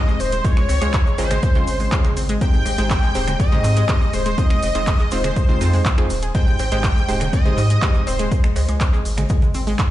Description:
progressive house; 122 BPM; 4/4; straight; Ab major; A4 = 441 Hz
wide unison lead; melody; 0.0-8.3 s; C5 to G5; -26 LUFS; equal; lush chorus, sidechain pumping, tape echo
airy dreamy lead; second line; 0.0-8.3 s; C6 to G6; -32 LUFS; equal; chorus, sidechain pumping, ping-pong delay
wide unison pluck; stabs; 0.0-8.3 s; Ab2 to Db5; -27 LUFS; right 2 dB; sidechain pumping, ping-pong delay
analog pluck; arpeggios; 0.1-9.7 s; Ab3 to Ab4; -28 LUFS; left 1 dB; chorus, vintage 12-bit sampler grit, sidechain pumping, ping-pong delay
tube shaker; percussion; 0.1-9.9 s; -39 LUFS; right 2 dB
woodblock, cowbell and congas; percussion; 0.1-9.5 s; -30 LUFS; right 1 dB; sidechain pumping on perc
round analog bass; bass; 0.2-9.7 s; Eb1 to Ab2; -21 LUFS; equal; sidechain pumping
deep house drum kit; drums; 0.2-9.9 s; finger snaps, handclaps, hi-hat; -28 LUFS; right 1 dB; overdrive, sidechain pumping on hats
electronic kick drum; drums; 0.4-9.9 s; -18 LUFS; equal; overdrive
digital ambience; played on a big sound system in a bare room, large studio reverb, nothing above 10.7 kHz; -16 LUFS; side -14 dB against mid
0.0-9.9 A section
0.4 Dbmaj7; 2.4 Abmaj7; 4.4 Fm7; 6.3 Abmaj7; 8.3 Db5

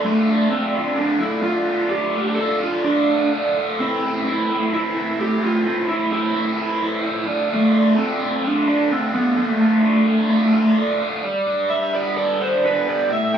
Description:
rock; 129 BPM; 4/4; straight; A4 = 440 Hz
lead guitar through a small cranked amp; melody; 0.0-13.4 s; A3 to G5; -19 LUFS; equal; overdrive
raw garage guitar; riff; 0.0-13.4 s; A2 to A4; -20 LUFS; right 2 dB; overdrive, phaser
wet studio reverb, RT60 0.6 s; band playing live in one room, studio reverb; -17 LUFS; side -8 dB against mid
0.0-11.2 A section; 11.2-13.4 B section
0.0 Dm; 3.8 Am; 7.3 Dm; 11.2 Gadd9

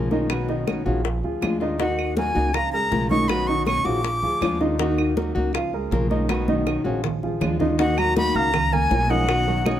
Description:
latin, Cuban son and guajira; 160 BPM; 4/4; straight; Eb minor; A4 = 436 Hz
nylon-string guitar; accompaniment; 0.0-9.8 s; B2 to Bb4; -26 LUFS; left 4 dB
dark grand piano; arpeggios; 0.0-9.8 s; Eb3 to F6; -26 LUFS; right 2 dB
upright bass; bass; 0.0-9.8 s; Bb1 to Eb2; -27 LUFS; right 1 dB
bongos; percussion; 0.1-9.8 s; -31 LUFS; left 6 dB
congas; percussion; 0.1-9.8 s; -29 LUFS; right 2 dB
claves; percussion; 0.3-9.8 s; -34 LUFS; right 8 dB
breathy bright jazz flute; melody; 1.8-4.6, 7.8-9.8 s; Gb5 to D6; -23 LUFS; equal
light reverb; -20 LUFS; side -11 dB against mid
0.0-7.8 A section; 7.8-9.8 B section
drum fill 6.3-7.8
0.3 Badd9; 1.0 Bb7; 1.8 Ebm; 2.5 Db6; 3.3 Badd9; 4.0 Bb7; 4.8 Ebm; 5.5 Db6; 6.3 Badd9; 7.0 Bb7; 7.8 Ebm; 8.5 Db6; 9.3 Badd9

